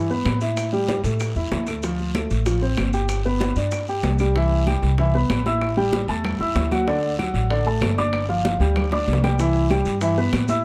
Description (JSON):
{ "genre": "latin, salsa", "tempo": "191 BPM", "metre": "4/4", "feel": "straight", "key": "C major", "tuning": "A4 = 442 Hz", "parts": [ { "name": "dark upright piano", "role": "accompaniment", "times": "0.0-10.6 s", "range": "D3 to E6", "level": "-25 LUFS", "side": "equal", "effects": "none" }, { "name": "upright bass", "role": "bass", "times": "0.0-10.6 s", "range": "G1 to A2", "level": "-25 LUFS", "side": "equal", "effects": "none" }, { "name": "congas", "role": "percussion", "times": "0.1-10.6 s", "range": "none", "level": "-32 LUFS", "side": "equal", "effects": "none" }, { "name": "maracas", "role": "percussion", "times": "0.1-4.3, 9.4-10.6 s", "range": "none", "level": "-44 LUFS", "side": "equal", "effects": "none" }, { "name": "bongos", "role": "percussion", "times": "0.3-10.5 s", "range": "none", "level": "-34 LUFS", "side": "equal", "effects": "none" }, { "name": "claves", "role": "percussion", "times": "0.3-10.5 s", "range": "none", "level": "-40 LUFS", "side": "equal", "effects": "none" }, { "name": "guiro", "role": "percussion", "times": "0.3-10.6 s", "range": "none", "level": "-40 LUFS", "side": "equal", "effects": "none" } ], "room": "light reverb", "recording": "dark, warm production", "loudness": "-22 LUFS", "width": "mono", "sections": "0.0-4.4 A section; 4.4-10.6 A section", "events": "drum fill 8.9-9.4", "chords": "0.0 Cmaj7 (rootless); 0.6 A5; 1.8 Dm7; 3.1 G; 4.4 Cmaj7; 5.6 A5; 6.9 D; 8.1 G5; 9.4 Cmaj7" }